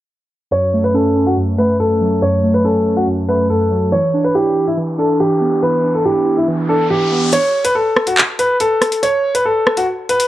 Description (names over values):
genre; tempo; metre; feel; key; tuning
hip hop, drill; 141 BPM; 4/4; half-time; F# phrygian; A4 = 441 Hz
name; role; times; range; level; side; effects
warm concert grand piano; melody; 0.5-10.3 s; E4 to C#5; -15 LUFS; equal; cassette tape, analog delay
warbly lo-fi synth keys; accompaniment; 0.5-7.4 s; F#2 to E4; -16 LUFS; right 1 dB; chorus, cassette tape
riser; sound effects; 4.8-7.3 s; none; -28 LUFS; left 1 dB; none
drill drum kit; drums; 7.3-10.3 s; handclaps, hi-hat, rim click; -16 LUFS; equal; cassette tape
room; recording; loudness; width
light reverb, digital ambience; home recording on cassette, low-pass filter; -13 LUFS; side -14 dB against mid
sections
0.5-7.3 A section; 7.3-10.3 B section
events
filter sweep 0.5-7.3; riser 4.8-7.3; kick muted 7.3-10.3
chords
0.5 F#m; 3.9 Em7; 7.3 N.C.